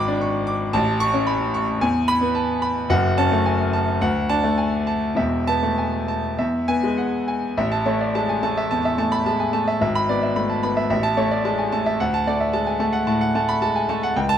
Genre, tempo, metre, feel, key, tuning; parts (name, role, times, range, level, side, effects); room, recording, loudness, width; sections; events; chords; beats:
classical, virtuoso piano study; 98-115 BPM; 4/4; rubato; A major; A4 = 439 Hz
clear concert grand piano; solo; 0.0-14.4 s; E1 to D6; -19 LUFS; equal
light reverb; close, detailed microphones; -19 LUFS; side -9 dB against mid
0.0-7.6 A section; 7.6-14.4 B section
0.0 G#dim; 0.7 A; 1.8 E; 2.9 F#m; 4.0 D; 5.2 Esus4; 6.4 E; 7.6 A; 9.8 E7/G#; 10.9 A; 12.0 D
0.21 | 0.74 1.27 1.81 2.34 | 2.89 3.45 4.01 4.58 | 5.17 5.78 6.38 6.97 | 7.58 8.15 8.71 9.26 | 9.81 10.36 10.90 11.45 | 11.99 12.53 13.07 13.61 | 14.15